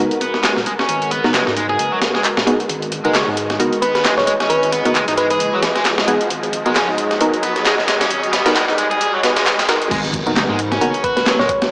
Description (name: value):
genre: breakbeat, breaks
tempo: 133 BPM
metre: 4/4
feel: swing 57% on 16ths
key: G# minor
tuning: A4 = 440 Hz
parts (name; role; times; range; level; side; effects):
- phased analog pad; sustained chords; 0.0-11.7 s; G#3 to D#5; -23 LUFS; equal; phaser, chorus, sidechain pumping
- filtered dub chord stab; stabs; 0.0-10.9 s; B3 to B4; -20 LUFS; equal; chorus, cassette tape, digital delay
- saturated sub bass; bass; 0.0-11.5 s; D#1 to G#2; -28 LUFS; equal; none
- riser and impact; sound effects; 0.2-11.7 s; none; -27 LUFS; equal; none
- breakbeat sampler-style drum kit; drums; 0.1-11.7 s; crash cymbal, hi-hat, kick drum, snare drum; -20 LUFS; equal; high-pass filter on hats, high-pass filter on kick, high-pass filter on snare, high-pass filter on cymbals, high-pass filter on room
- biting overdriven guitar; riff; 0.2-11.5 s; F#3 to G#4; -21 LUFS; equal; low-pass filter, digital delay
- garage drum kit; drums; 0.4-11.7 s; handclaps, hi-hat; -23 LUFS; equal; none
- thumb-piano-like synth pluck; melody; 3.8-5.4, 11.0-11.6 s; B4 to C#5; -18 LUFS; equal; chorus, telephone sound, digital delay
room: wet lush hall reverb, RT60 2.2 s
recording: high-pass filter, small speaker sound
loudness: -14 LUFS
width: side -28 dB against mid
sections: 0.0-9.9 A section; 9.9-11.7 B section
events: build-up 0.0-9.9; riser 0.2-9.9; drop 9.9-11.7; impact 9.9-11.7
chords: 0.0 G#m9